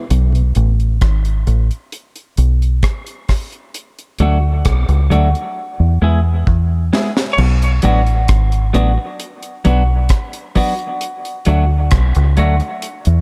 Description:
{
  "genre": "dub reggae",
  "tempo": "66 BPM",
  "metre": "4/4",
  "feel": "straight",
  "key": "B dorian",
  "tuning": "A4 = 443 Hz",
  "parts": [
    { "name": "deep dub fingered electric bass", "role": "bass", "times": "0.1-13.2 s", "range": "G#1 to E2", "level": "-15 LUFS", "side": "equal", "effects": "none" },
    { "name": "deep reggae drum kit", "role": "drums", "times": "0.1-13.2 s", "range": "crash cymbal, hi-hat, kick drum, rim click, snare drum", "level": "-21 LUFS", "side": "equal", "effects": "none" },
    { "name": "semi-hollow electric guitar", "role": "accompaniment", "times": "4.2-12.7 s", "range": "F#3 to G#4", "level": "-22 LUFS", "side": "equal", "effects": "dub echo" },
    { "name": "lightly driven lead guitar", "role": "melody", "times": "7.3-7.4 s", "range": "C#5", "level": "-24 LUFS", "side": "equal", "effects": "dub echo" }
  ],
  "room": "light reverb, small room ambience",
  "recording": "echo-heavy mix",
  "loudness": "-15 LUFS",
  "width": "mono",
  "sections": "0.0-7.4 A section; 7.4-13.2 B section",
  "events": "break 0.0-3.7; drum fill 5.6-7.4",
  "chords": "0.1 G#m; 3.7 D; 5.6 E; 7.4 Bm; 11.0 D"
}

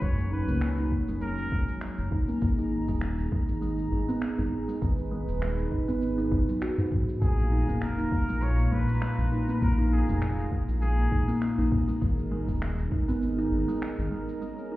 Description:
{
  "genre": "organic downtempo",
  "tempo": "100 BPM",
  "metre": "4/4",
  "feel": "swing 56% on 16ths",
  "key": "G# dorian",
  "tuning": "A4 = 441 Hz",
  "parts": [
    { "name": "trumpet with straight mute", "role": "melody", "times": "0.0-1.8, 7.2-11.4 s", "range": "G#4 to C#5", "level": "-37 LUFS", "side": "equal", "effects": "digital delay" },
    { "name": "warm analog pad", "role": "sustained chords", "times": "0.0-14.8 s", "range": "A#2 to A#5", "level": "-34 LUFS", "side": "equal", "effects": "chorus, sidechain pumping" },
    { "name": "buzzing kalimba", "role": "arpeggios", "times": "0.0-14.8 s", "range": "F#3 to F#4", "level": "-30 LUFS", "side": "equal", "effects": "low-pass filter, digital delay" },
    { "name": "round analog bass", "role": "bass", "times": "0.0-14.1 s", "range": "D#1 to G#2", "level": "-28 LUFS", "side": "equal", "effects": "sidechain pumping" },
    { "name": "electronic kick drum", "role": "drums", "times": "0.0-13.1 s", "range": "none", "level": "-28 LUFS", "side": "equal", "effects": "none" },
    { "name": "electronic shaker and finger snaps", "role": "drums", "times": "0.0-14.7 s", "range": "none", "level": "-43 LUFS", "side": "equal", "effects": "none" }
  ],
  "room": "light reverb, digital ambience",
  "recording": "heard muffled through a wall, stone room reverb, EQ",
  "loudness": "-25 LUFS",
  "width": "side -17 dB against mid",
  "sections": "0.0-14.8 A section",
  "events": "filter sweep on kalimba 0.0-14.8; break 14.4-14.8",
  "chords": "0.0 F#; 2.4 G#m; 7.2 A#5; 12.0 G#5"
}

